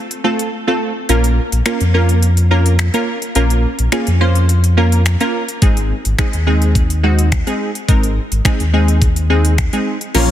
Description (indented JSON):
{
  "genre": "dance-pop",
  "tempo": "106 BPM",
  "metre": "4/4",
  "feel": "straight",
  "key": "unclear",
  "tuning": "A4 = 440 Hz",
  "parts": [
    { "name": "pop drum kit", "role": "drums", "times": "0.1-10.3 s", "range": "crash cymbal, finger snaps, hi-hat, kick drum, snare drum", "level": "-18 LUFS", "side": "equal", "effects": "soft clipping on snare" },
    { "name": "wavetable chord stab", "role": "accompaniment", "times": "0.2-10.3 s", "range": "Ab3 to C5", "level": "-18 LUFS", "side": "right 1 dB", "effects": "sidechain pumping" },
    { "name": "sub bass with octave", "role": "bass", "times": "1.1-10.3 s", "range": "Ab1 to F2", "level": "-13 LUFS", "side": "equal", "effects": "sidechain pumping" },
    { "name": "string machine, violins", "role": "sustained chords", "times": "10.1-10.3 s", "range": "F3 to Db4", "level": "-17 LUFS", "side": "left 1 dB", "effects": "ensemble chorus, sidechain pumping" },
    { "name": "riser", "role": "sound effects", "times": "10.1-10.3 s", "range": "none", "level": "barely audible", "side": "none", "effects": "none" }
  ],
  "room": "light reverb, digital ambience",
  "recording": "dense, heavily limited modern master",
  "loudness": "-12 LUFS",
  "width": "side -12 dB against mid",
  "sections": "0.0-10.1 A section",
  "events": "drums muted 0.5-1.1; drum fill 10.1",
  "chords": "0.0 F; 1.1 Bbm; 5.6 Ab"
}